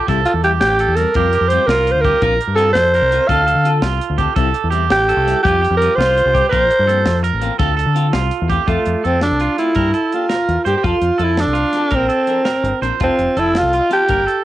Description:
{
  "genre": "highlife guitar band",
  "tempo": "111 BPM (dotted quarters)",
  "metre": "12/8",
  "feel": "straight",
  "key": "F major",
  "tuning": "A4 = 440 Hz",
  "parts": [
    { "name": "electric guitar at the edge of break-up", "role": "arpeggios", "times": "0.0-14.4 s", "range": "F4 to C5", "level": "-21 LUFS", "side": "right 8 dB", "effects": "cassette tape, analog delay" },
    { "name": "clean electric guitar", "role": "accompaniment", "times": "0.1-14.2 s", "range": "F3 to Bb4", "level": "-26 LUFS", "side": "left 11 dB", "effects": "phaser, cassette tape" },
    { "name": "deep dub fingered electric bass", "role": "bass", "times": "0.1-14.3 s", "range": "F1 to D3", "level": "-19 LUFS", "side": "left 2 dB", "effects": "none" },
    { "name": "tight funk drum kit", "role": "drums", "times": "0.1-14.4 s", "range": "hi-hat, kick drum, snare drum", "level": "-23 LUFS", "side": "left 2 dB", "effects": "cassette tape" },
    { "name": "breathy alto saxophone", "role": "melody", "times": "0.3-14.4 s", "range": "A3 to F5", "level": "-15 LUFS", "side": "right 1 dB", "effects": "cassette tape" }
  ],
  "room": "light reverb",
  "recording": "home recording on cassette",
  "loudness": "-13 LUFS",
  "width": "side -14 dB against mid",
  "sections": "0.0-8.7 A section; 8.7-14.4 B section",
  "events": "none",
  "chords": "0.1 C; 1.1 Fsus2; 2.2 Bbsus2; 3.3 Dm7; 4.4 C; 5.4 Fsus2; 6.5 Bbsus2; 7.6 Dm7; 8.7 F; 9.8 Gm; 10.8 F; 11.9 Bbadd9; 13.0 F"
}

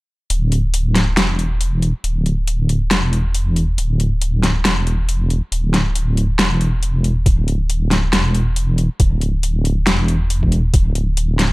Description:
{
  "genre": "deep dubstep",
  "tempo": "138 BPM",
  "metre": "4/4",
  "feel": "swing 58% on 16ths, half-time",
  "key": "unclear",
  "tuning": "A4 = 440 Hz",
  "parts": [
    { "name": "deep soft wobble bass", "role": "bass", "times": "0.3-11.5 s", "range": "D1 to E1", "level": "-16 LUFS", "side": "equal", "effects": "chorus" },
    { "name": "dubstep drum kit", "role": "drums", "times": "0.3-11.5 s", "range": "hi-hat, snare drum", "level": "-19 LUFS", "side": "equal", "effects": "none" },
    { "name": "electronic kick drum", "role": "drums", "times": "7.3-10.8 s", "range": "none", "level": "-16 LUFS", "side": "equal", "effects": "none" }
  ],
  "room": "little or no reverb",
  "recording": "none",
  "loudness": "-15 LUFS",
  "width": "side -22 dB against mid",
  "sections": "0.3-11.5 A section",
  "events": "none",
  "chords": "none"
}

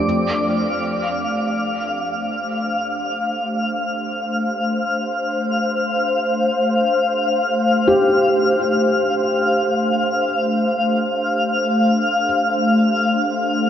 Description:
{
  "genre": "ambient",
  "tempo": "free time",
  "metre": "none",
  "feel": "none",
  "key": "unclear",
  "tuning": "A4 = 440 Hz",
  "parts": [
    { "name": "warm analog pad", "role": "sustained chords", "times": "0.0-13.7 s", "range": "A3 to C5", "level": "-20 LUFS", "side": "left 1 dB", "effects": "chorus" },
    { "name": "felt-muted upright piano", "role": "arpeggios", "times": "0.0-0.1, 7.9-13.7 s", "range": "G4", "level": "-22 LUFS", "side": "equal", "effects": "diffuse ambient delay" },
    { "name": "twinkling granular texture", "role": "texture", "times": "0.0-13.7 s", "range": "F5", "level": "-21 LUFS", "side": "left 1 dB", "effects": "built-in reverb" }
  ],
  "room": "wet huge ambient reverb, RT60 7.5 s",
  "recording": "worn, warbling old tape, cassette tape, warbly pitch drift, nothing above 7.5 kHz",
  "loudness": "-17 LUFS",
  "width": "side -9 dB against mid",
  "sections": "0.0-13.7 A section",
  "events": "filter sweep on analog synth pad 0.0-13.7",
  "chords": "0.0 G9sus4"
}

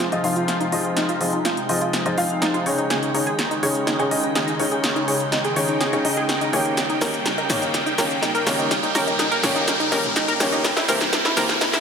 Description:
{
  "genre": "progressive house",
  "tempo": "124 BPM",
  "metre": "4/4",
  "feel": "straight",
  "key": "F minor",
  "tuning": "A4 = 440 Hz",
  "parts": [
    { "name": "filtered supersaw swell", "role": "sustained chords", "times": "0.0-11.8 s", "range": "C3 to G5", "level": "-27 LUFS", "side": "right 1 dB", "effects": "phaser" },
    { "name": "analog pluck", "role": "arpeggios", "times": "0.0-11.8 s", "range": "Eb4 to Bb4", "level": "-26 LUFS", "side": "equal", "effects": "chorus, cassette tape, digital delay" },
    { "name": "dark grand piano", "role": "stabs", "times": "0.0-11.5 s", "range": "Db3 to F5", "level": "-24 LUFS", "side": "left 2 dB", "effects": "low-pass filter, digital delay" },
    { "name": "round analog bass", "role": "bass", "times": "0.0-11.7 s", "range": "none", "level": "barely audible", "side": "none", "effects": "none" },
    { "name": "big-room dance drum kit", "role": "drums", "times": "0.0-11.8 s", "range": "hi-hat, shaker, snare drum", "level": "-24 LUFS", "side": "equal", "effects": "high-pass filter on perc, high-pass filter on snare, high-pass filter on hats, high-pass filter on room" },
    { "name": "riser", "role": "sound effects", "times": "4.2-11.8 s", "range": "none", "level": "-29 LUFS", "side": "equal", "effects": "none" },
    { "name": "drifting glass-harmonics texture", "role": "texture", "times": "0.1-11.8 s", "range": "G4 to G5", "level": "-32 LUFS", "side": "right 3 dB", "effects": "chorus, built-in reverb" },
    { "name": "electronic congas, bongos and toms", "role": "percussion", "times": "0.2-11.7 s", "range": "none", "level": "-34 LUFS", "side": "left 4 dB", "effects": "none" }
  ],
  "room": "moderate lush hall reverb, RT60 1.7 s",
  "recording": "high-pass filter",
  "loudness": "-18 LUFS",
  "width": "side -6 dB against mid",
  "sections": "0.0-11.8 A section",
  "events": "build-up 0.0-11.8; drum fill 0.0-11.8; filter sweep on synth pluck 0.0-11.8; filter sweep 0.0-11.8; riser 4.2-11.8",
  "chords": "0.0 Fm7; 2.9 Dbsus2; 6.8 Eb7; 10.6 C7"
}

